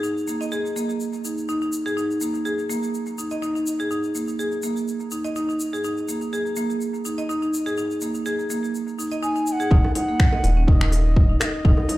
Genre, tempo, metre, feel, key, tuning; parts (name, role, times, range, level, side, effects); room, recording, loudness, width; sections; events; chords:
afro house; 124 BPM; 4/4; swing 54% on 16ths; A4 = 440 Hz
marimba with medium hard mallets; arpeggios; 0.0-12.0 s; Bb3 to Eb5; -24 LUFS; equal; sidechain pumping, dub echo
tube shaker; percussion; 0.0-9.7 s; -36 LUFS; left 2 dB
reedy bansuri; melody; 9.2-12.0 s; Eb5 to Ab5; -28 LUFS; right 1 dB; dub echo
warm sub bass; bass; 9.7-11.7 s; Eb1; -20 LUFS; equal; sidechain pumping
electronic kick drum; drums; 9.7-11.8 s; -17 LUFS; equal
bongos; percussion; 9.7-12.0 s; -30 LUFS; right 2 dB
afro-pop drum kit; drums; 10.0-12.0 s; finger snaps, hi-hat; -27 LUFS; left 1 dB; low-pass filter on hats, low-pass filter on snare, low-pass filter on room
light reverb, small room ambience; played on a big sound system in a bare room, large studio reverb; -21 LUFS; side -17 dB against mid
0.0-9.7 A section; 9.7-12.0 B section
drop 9.7-12.0
0.0 Bbsus4; 9.7 Ebm